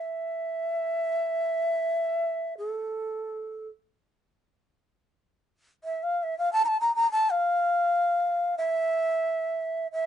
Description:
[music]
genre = japanese traditional, Japanese chamber music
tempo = free time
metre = none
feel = none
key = unclear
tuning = A4 = 440 Hz
[part]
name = breathy bright long shakuhachi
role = solo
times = 0.0-10.1 s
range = A4 to Bb5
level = -25 LUFS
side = equal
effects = none
[sound]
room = light reverb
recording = nothing above 10.6 kHz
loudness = -25 LUFS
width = side -9 dB against mid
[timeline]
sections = 0.0-4.0 A section; 4.0-10.1 A section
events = none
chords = none

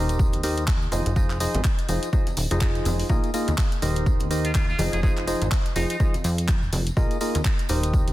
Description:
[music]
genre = piano house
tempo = 124 BPM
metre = 4/4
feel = swing 58% on 16ths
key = F minor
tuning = A4 = 436 Hz
[part]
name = percussive organ stab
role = riff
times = 0.0-8.1 s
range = Eb3 to Eb5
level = -27 LUFS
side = equal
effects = chorus, sidechain pumping, tape echo
[part]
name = plucky analog bass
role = bass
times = 0.0-8.1 s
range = Eb1 to F2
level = -26 LUFS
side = equal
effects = sidechain pumping
[part]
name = house drum kit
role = drums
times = 0.1-8.1 s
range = handclaps, hi-hat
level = -32 LUFS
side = equal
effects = none
[part]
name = tambourine and congas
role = percussion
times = 0.1-8.1 s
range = none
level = -35 LUFS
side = equal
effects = none
[part]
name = electronic kick drum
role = drums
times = 0.2-8.0 s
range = none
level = -22 LUFS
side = equal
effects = overdrive
[part]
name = trumpet with metal mute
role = melody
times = 4.4-6.0 s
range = Eb4 to Ab4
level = -33 LUFS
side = equal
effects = tape echo
[sound]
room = little or no reverb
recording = dense, heavily limited modern master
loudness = -21 LUFS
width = side -16 dB against mid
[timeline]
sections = 0.0-8.1 A section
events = none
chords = 0.0 Eb6; 0.9 Fm7; 3.1 Bb7sus4; 3.8 Eb6; 4.8 Fm7; 7.0 Bb7sus4

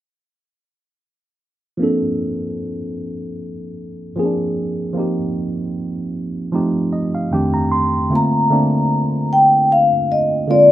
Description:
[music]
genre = R&B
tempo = 76 BPM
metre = 4/4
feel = swing 54% on 16ths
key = Bb major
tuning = A4 = 437 Hz
[part]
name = tine electric piano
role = accompaniment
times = 1.8-10.7 s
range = F2 to C6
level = -18 LUFS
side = right 1 dB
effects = overdrive, phaser
[part]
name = vibraphone with soft mallets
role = melody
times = 8.2-10.7 s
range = D5 to Bb5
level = -13 LUFS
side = left 2 dB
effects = none
[sound]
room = small room ambience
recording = rough home demo mix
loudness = -16 LUFS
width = side -13 dB against mid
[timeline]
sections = 1.8-8.1 A section; 8.1-10.7 B section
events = tine electric piano fill 6.5-8.1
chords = 1.8 Bbmaj9; 4.2 Bb7; 5.0 Eb69; 6.5 F9; 7.3 F13; 8.1 Bbmaj9

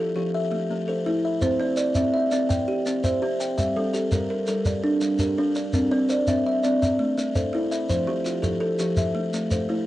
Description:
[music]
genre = southern african traditional, mbira-style interlocking cycle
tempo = 111 BPM (dotted quarters)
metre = 12/8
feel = straight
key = C mixolydian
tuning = A4 = 440 Hz
[part]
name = buzzing kalimba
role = arpeggios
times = 0.0-9.9 s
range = F3 to G5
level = -25 LUFS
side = left 2 dB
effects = cassette tape
[part]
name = kalimba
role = arpeggios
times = 0.0-9.9 s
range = F3 to E5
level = -25 LUFS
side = right 2 dB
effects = cassette tape
[part]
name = shekere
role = percussion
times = 1.4-9.7 s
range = none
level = -27 LUFS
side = equal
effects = none
[sound]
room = wet booth ambience, RT60 0.2 s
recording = home recording on cassette, nothing above 10.7 kHz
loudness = -21 LUFS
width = side -15 dB against mid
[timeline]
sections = 0.0-9.9 A section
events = none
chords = 0.3 Am; 1.4 C; 3.6 Gm; 5.7 C; 6.8 Am; 7.9 F; 9.0 Am

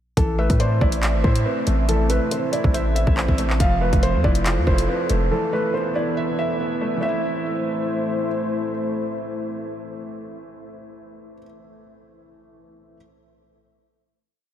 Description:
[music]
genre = hip hop, drill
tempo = 140 BPM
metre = 4/4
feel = half-time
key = A minor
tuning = A4 = 440 Hz
[part]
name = dark concert grand piano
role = melody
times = 0.2-8.3 s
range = A4 to F5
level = -26 LUFS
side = equal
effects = ping-pong delay
[part]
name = felt-muted upright piano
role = accompaniment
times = 0.2-13.0 s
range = E3 to E5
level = -28 LUFS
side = right 1 dB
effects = none
[part]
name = dark analog pad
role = sustained chords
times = 1.1-11.2 s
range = E3 to E5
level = -28 LUFS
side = left 1 dB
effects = chorus
[part]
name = long sustained 808-style bass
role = bass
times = 0.2-5.3 s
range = F1 to A2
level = -21 LUFS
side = equal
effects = none
[part]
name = drill drum kit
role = drums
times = 0.2-5.2 s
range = handclaps, hi-hat, kick drum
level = -23 LUFS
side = equal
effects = none
[part]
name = soft round pluck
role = second line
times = 0.4-3.1 s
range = C5 to E5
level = -36 LUFS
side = left 3 dB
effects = none
[sound]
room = moderate huge ambient reverb, RT60 7.3 s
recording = dreamy mix soaked in reverb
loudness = -19 LUFS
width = side -10 dB against mid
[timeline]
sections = 0.2-7.0 hook; 7.0-10.5 final chord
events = none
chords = 0.2 Am; 3.6 Fmaj7; 5.3 Esus4; 7.0 Am

